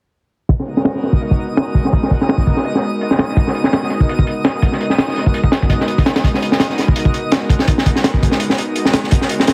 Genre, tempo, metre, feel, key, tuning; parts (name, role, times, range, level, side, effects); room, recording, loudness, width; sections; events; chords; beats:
drum and bass, jungle; 167 BPM; 4/4; swing 54% on 16ths; G# minor; A4 = 440 Hz
airy breathy pad; sustained chords; 0.6-9.5 s; G#3 to A#4; -24 LUFS; equal; chorus
crunchy breakbeat drum kit; drums; 0.5-9.5 s; hi-hat, kick drum, snare drum; -16 LUFS; equal; low-pass filter on kick, low-pass filter on hats, low-pass filter on snare, low-pass filter on room
twinkling granular texture; texture; 0.8-9.5 s; D#5 to D#6; -30 LUFS; equal; built-in reverb
light reverb, studio ambience; heavily compressed radio sound, multiband compression; -16 LUFS; mono
0.5-9.5 A section
filter sweep on drum 0.5-9.5
0.5 G#m7
| 0.49 0.85 1.21 1.57 | 1.93 2.29 2.65 3.01 | 3.37 3.73 4.09 4.45 | 4.80 5.16 5.52 5.88 | 6.24 6.60 6.96 7.32 | 7.68 8.04 8.40 8.76 | 9.12 9.47